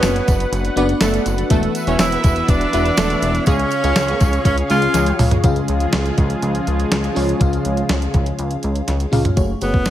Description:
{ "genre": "1980s-style pop", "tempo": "122 BPM", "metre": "4/4", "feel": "straight", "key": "unclear", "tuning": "A4 = 440 Hz", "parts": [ { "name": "clear tenor saxophone", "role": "melody", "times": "0.0-5.2, 9.6-9.9 s", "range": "B3 to E#4", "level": "-21 LUFS", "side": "right 1 dB", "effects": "tape echo" }, { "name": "warm studio violin section", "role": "second line", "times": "0.0-5.2 s", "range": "B4 to E#5", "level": "-30 LUFS", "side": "right 1 dB", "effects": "tape echo" }, { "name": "FM electric piano with soft pad layer", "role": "accompaniment", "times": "0.0-9.9 s", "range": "C#3 to E#5", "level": "-22 LUFS", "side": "left 2 dB", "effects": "chorus" }, { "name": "brassy analog pad", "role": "sustained chords", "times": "0.0-9.3 s", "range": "C#3 to E6", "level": "-25 LUFS", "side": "right 1 dB", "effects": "chorus" }, { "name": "funky polysynth comp", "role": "stabs", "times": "0.0-5.1 s", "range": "G#3 to C#5", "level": "-26 LUFS", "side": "right 2 dB", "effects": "chorus, tape echo" }, { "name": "chorused synth bass", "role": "bass", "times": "0.0-9.9 s", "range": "E1 to C#2", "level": "-21 LUFS", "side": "equal", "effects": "none" }, { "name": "clean 12-bit digital drum machine", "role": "drums", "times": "0.0-9.9 s", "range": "hi-hat, kick drum, snare drum, tambourine, toms", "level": "-18 LUFS", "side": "equal", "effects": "gated reverb" }, { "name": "tambourine", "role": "percussion", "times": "0.0-5.3, 9.4-9.9 s", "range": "none", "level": "-37 LUFS", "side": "right 9 dB", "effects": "none" } ], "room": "light reverb", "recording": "none", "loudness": "-15 LUFS", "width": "side -12 dB against mid", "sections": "0.0-5.4 A section; 5.4-9.4 B section", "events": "drum fill 4.9-5.4, 8.9-9.4", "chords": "0.0 Bm/F#; 1.5 Esus2; 3.5 C#; 9.4 F#madd9", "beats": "0.03 0.52 1.01 | 1.50 2.00 2.49 2.98 | 3.47 3.96 4.46 4.95 | 5.44 5.93 6.42 6.92 | 7.41 7.90 8.39 8.88 | 9.37 9.87" }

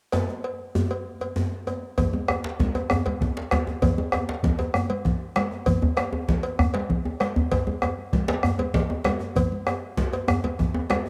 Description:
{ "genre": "west african traditional, West African drum ensemble", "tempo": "130 BPM (dotted quarters)", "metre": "12/8", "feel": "straight", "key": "none", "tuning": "none", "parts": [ { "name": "cowbell", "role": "percussion", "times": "0.1-11.0 s", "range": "none", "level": "-34 LUFS", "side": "equal", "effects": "none" }, { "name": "djembe", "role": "percussion", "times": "0.1-11.1 s", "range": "none", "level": "-32 LUFS", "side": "equal", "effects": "none" }, { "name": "bombo", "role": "percussion", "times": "2.0-11.0 s", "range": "none", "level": "-30 LUFS", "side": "equal", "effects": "none" }, { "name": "congas", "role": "percussion", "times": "2.0-11.0 s", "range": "none", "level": "-31 LUFS", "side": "equal", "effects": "none" }, { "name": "djembe", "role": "percussion", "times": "2.0-11.0 s", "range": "none", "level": "-29 LUFS", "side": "equal", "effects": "none" } ], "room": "moderate spring reverb, RT60 1.9 s", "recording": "home recording on cassette", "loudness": "-25 LUFS", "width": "mono", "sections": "0.1-2.0 A section; 2.0-11.1 B section", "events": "none", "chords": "none", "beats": "| 0.13 0.59 1.05 1.52 | 1.98 2.44 2.90 3.36 | 3.82 4.29 4.75 5.21 | 5.67 6.13 6.59 7.05 | 7.51 7.97 8.44 8.90 | 9.36 9.82 10.28 10.74" }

